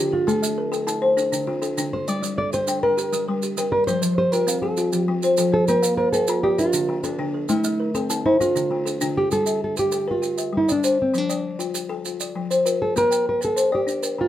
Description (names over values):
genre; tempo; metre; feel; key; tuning
southern african traditional, mbira-style interlocking cycle; 132 BPM (dotted quarters); 12/8; straight; G equiheptatonic; A4 = 440 Hz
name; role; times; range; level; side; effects
nylon-string guitar; melody; 0.0-14.3 s; C4 to D5; -22 LUFS; right 1 dB; none
buzzing kalimba; arpeggios; 0.0-14.3 s; D3 to Bb5+43c; -24 LUFS; left 3 dB; none
kalimba; arpeggios; 0.0-9.6 s; D3 to F5+29c; -27 LUFS; right 2 dB; none
maracas; percussion; 0.3-14.2 s; none; -30 LUFS; right 6 dB; none
room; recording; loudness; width
moderate small room reverb, RT60 0.5 s; none; -19 LUFS; side -12 dB against mid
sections
0.0-9.3 A section; 9.3-14.3 A section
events
none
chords
0.3 Am; 1.2 Dm; 2.1 Gm; 3.9 F; 5.7 Bb; 6.6 Dm; 7.5 Am; 8.4 Dm; 9.3 Gm; 11.1 F; 13.0 Bb